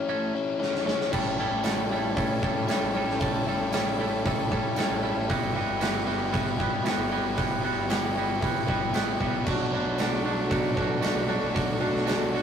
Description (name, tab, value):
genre	indie rock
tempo	115 BPM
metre	4/4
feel	straight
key	unclear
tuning	A4 = 440 Hz
part	biting overdriven guitar	riff	0.0-12.4 s	F#3 to G4	-28 LUFS	left 3 dB	none
part	twangy electric guitar	riff	0.0-12.4 s	A2 to A4	-30 LUFS	right 5 dB	none
part	big rock drum kit	drums	0.6-12.2 s	crash cymbal, hi-hat, kick drum, snare drum	-29 LUFS	right 1 dB	none
part	soft string machine	sustained chords	2.2-12.4 s	G4 to C#6	-39 LUFS	left 1 dB	none
part	fuzz fingered electric bass	bass	1.1-12.4 s	G1 to B2	-36 LUFS	right 1 dB	overdrive
part	tambourine	percussion	1.6-12.2 s	none	-45 LUFS	right 6 dB	none
room	moderate booth ambience, RT60 0.2 s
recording	rough rehearsal-room recording, tube saturation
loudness	-24 LUFS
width	side -8 dB against mid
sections	0.0-1.1 A section; 1.1-12.4 B section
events	break 0.0-1.1; drum fill 0.6-1.1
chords	0.0 A; 1.1 A7; 5.3 Emadd9/G; 9.5 Bm7